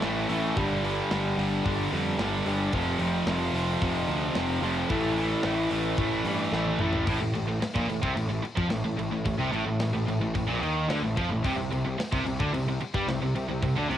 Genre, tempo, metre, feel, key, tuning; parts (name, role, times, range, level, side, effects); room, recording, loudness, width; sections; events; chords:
heavy metal; 110 BPM; 4/4; straight; A minor; A4 = 440 Hz
high-gain distorted guitar; riff; 0.0-14.0 s; F2 to A3; -33 LUFS; left 6 dB; distortion, cassette tape
raw garage guitar; riff; 0.0-14.0 s; F2 to A3; -30 LUFS; equal; overdrive, cassette tape
tight distorted guitar; riff; 0.0-14.0 s; F2 to A3; -32 LUFS; right 6 dB; distortion, cassette tape
fuzz picked electric bass; bass; 0.0-14.0 s; F1 to G2; -32 LUFS; equal; overdrive
tight metal drum kit; drums; 0.0-14.0 s; crash cymbal, hi-hat, kick drum, snare drum, toms; -34 LUFS; equal; cassette tape
light reverb, small room ambience; home recording on cassette; -25 LUFS; side -11 dB against mid
0.0-7.1 A section; 7.1-14.0 B section
drum fill 6.5-7.1
0.0 A5; 0.6 G5; 2.7 F5; 4.9 A5; 7.1 Am; 11.4 C5